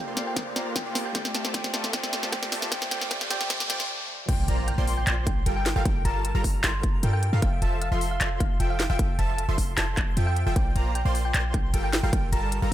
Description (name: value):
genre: future bass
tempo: 153 BPM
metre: 4/4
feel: half-time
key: F major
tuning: A4 = 440 Hz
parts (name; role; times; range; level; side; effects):
- thumb-piano-like synth pluck; melody; 0.0-12.6 s; F5 to C6; -35 LUFS; equal; chorus, sidechain pumping, tape echo
- glassy digital keys; accompaniment; 0.0-4.3 s; A3 to D5; -38 LUFS; left 1 dB; chorus, sidechain pumping, tape echo
- rich studio string section; sustained chords; 0.0-4.3 s; A3 to F5; -41 LUFS; left 1 dB; none
- supersaw stab; riff; 0.0-12.7 s; F3 to C6; -33 LUFS; equal; sidechain pumping
- riser and impact; sound effects; 0.0-5.9 s; none; -34 LUFS; right 1 dB; none
- trap drum kit; drums; 0.2-12.6 s; crash cymbal, handclaps, hi-hat, snare drum; -29 LUFS; equal; none
- electronic kick drum; drums; 0.4-12.2 s; none; -27 LUFS; equal; none
- airy dreamy lead; arpeggios; 4.3-12.7 s; F5 to C6; -37 LUFS; equal; chorus, sidechain pumping, tape echo
- warm 808-style bass; bass; 4.3-12.7 s; F1 to G2; -26 LUFS; equal; sidechain pumping
room: little or no reverb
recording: high-pass filter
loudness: -23 LUFS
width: side -13 dB against mid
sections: 0.0-4.3 A section; 4.3-12.7 B section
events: build-up 0.0-4.3; drum fill 0.0-3.9; riser 0.0-3.9; filter sweep on supersaw synth 0.0-4.3; filter sweep 0.0-4.3; break 3.9-4.3; drop 4.3-12.7; impact 4.3-5.9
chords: 0.0 Gm9; 1.1 Fmaj9; 4.3 Bb69; 5.7 Gm9; 7.4 Fmaj9; 10.6 Bb69; 11.9 Gm9